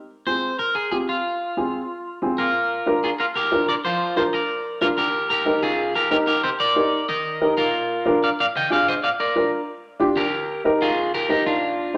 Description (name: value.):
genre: latin.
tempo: 185 BPM.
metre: 4/4.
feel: straight.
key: unclear.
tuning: A4 = 439 Hz.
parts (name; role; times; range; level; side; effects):
electric guitar at the edge of break-up; melody; 0.3-12.0 s; D4 to G5; -24 LUFS; equal; spring reverb.
dark upright piano; accompaniment; 0.3-12.0 s; C4 to Bb4; -24 LUFS; equal; none.
room: wet studio reverb, RT60 0.6 s.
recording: none.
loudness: -22 LUFS.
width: mono.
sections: 0.0-2.5 A section; 2.5-12.0 B section.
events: none.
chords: 0.0 Fm; 2.5 Bb; 5.1 Eb; 7.7 Bb; 10.3 Ebadd9.